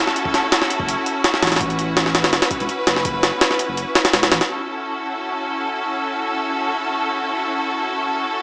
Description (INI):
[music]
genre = drum and bass, jungle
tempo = 166 BPM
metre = 4/4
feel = straight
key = F# minor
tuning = A4 = 440 Hz
[part]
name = bright studio string section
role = sustained chords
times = 0.0-8.4 s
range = C#4 to B4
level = -21 LUFS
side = equal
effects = none
[part]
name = jungle sampler-style drum kit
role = drums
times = 0.1-4.5 s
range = hi-hat, kick drum, snare drum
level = -17 LUFS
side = equal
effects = none
[part]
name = saturated sub bass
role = bass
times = 0.8-4.4 s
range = E1 to A1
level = -27 LUFS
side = equal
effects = none
[sound]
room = moderate echo chamber reverb, RT60 1.8 s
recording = small speaker sound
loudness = -17 LUFS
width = side -36 dB against mid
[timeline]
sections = 0.0-4.5 A section; 4.5-8.4 B section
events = none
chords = 0.0 F#m7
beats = | 0.16 0.52 0.88 1.25 | 1.61 1.97 2.33 2.69 | 3.05 3.41 3.77 4.14 | 4.50 4.86 5.22 5.58 | 5.94 6.30 6.67 7.03 | 7.39 7.75 8.11